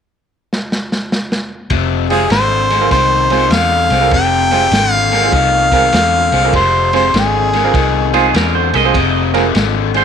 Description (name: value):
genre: electric blues shuffle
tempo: 100 BPM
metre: 4/4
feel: swing 65% on 8ths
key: unclear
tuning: A4 = 441 Hz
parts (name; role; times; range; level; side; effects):
- crunchy breakbeat drum kit; drums; 0.5-10.0 s; kick drum, ride cymbal, snare drum; -20 LUFS; equal; none
- raw garage guitar; riff; 1.7-10.0 s; F2 to Eb3; -17 LUFS; left 16 dB; overdrive
- vintage muted fingered electric bass; bass; 1.7-10.0 s; F1 to E2; -18 LUFS; equal; none
- warm harmonica; melody; 2.1-8.3 s; Ab4 to G5; -13 LUFS; equal; none
- bright upright piano; accompaniment; 2.1-10.0 s; C4 to C5; -19 LUFS; right 13 dB; none
- electric guitar at the edge of break-up; second line; 8.1-10.0 s; Ab4 to Eb5; -17 LUFS; right 15 dB; none
room: light reverb, small room ambience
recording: 1960s-style stereo with parts hard left and right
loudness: -11 LUFS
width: side -7 dB against mid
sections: 0.0-1.7 A section; 1.7-10.0 B section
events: drum fill 0.5-1.7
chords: 0.0 N.C.; 1.7 Fm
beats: 0.51 1.11 | 1.71 2.31 2.92 3.52 | 4.12 4.72 5.32 5.93 | 6.53 7.13 7.73 8.34 | 8.94 9.54